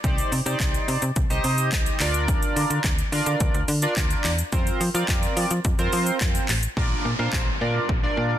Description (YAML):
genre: dance-pop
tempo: 107 BPM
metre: 4/4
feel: straight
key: Bb major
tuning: A4 = 442 Hz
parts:
  - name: chorused polysynth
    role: accompaniment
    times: 0.0-8.4 s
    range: C4 to Eb5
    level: -26 LUFS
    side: right 1 dB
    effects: sidechain pumping
  - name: slap-like FM bass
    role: bass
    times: 0.0-8.4 s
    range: A1 to F3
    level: -26 LUFS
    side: equal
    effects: sidechain pumping
  - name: house drum kit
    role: drums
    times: 0.0-8.0 s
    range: handclaps, hi-hat, kick drum, shaker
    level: -24 LUFS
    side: equal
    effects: overdrive
  - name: downlifter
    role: sound effects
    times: 6.8-8.4 s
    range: none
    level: -31 LUFS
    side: equal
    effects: none
room: little or no reverb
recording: dense, heavily limited modern master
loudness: -20 LUFS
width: side -11 dB against mid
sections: 0.0-6.8 A section; 6.8-8.4 B section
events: none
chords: 0.0 Cmadd9; 2.0 Bb/D; 4.5 Fsus4; 6.8 Bb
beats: | 0.04 0.60 1.16 1.72 | 2.28 2.84 3.40 3.96 | 4.53 5.09 5.65 6.21 | 6.77 7.33 7.89